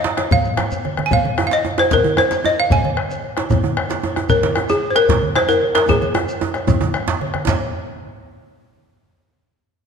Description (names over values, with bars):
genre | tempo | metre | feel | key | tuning
west african traditional, West African drum ensemble | 151 BPM (dotted quarters) | 12/8 | straight | Ab major pentatonic | A4 = 440 Hz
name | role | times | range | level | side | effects
balafon | melody | 0.0-7.2 s | Ab4 to Ab5 | -17 LUFS | left 1 dB | none
djembe | percussion | 0.0-7.6 s | none | -26 LUFS | left 6 dB | none
djembe | percussion | 0.0-7.6 s | none | -23 LUFS | right 7 dB | none
shekere | percussion | 0.0-7.6 s | none | -30 LUFS | left 2 dB | none
congas | percussion | 0.1-7.6 s | none | -25 LUFS | right 6 dB | none
bombo | percussion | 0.2-7.6 s | none | -24 LUFS | left 3 dB | none
cowbell | percussion | 0.2-7.6 s | none | -29 LUFS | left 2 dB | none
room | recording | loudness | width
wet concert hall reverb, RT60 1.9 s | dark, warm production | -15 LUFS | side -6 dB against mid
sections
0.0-7.5 A section; 7.5-9.0 B section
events
drum fill 0.5-1.1, 5.9-7.5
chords
none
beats
0.32 0.72 | 1.12 1.52 1.92 2.31 | 2.71 3.11 3.51 3.90 | 4.30 4.70 5.09 5.49 | 5.89 6.28 6.68 7.07 | 7.47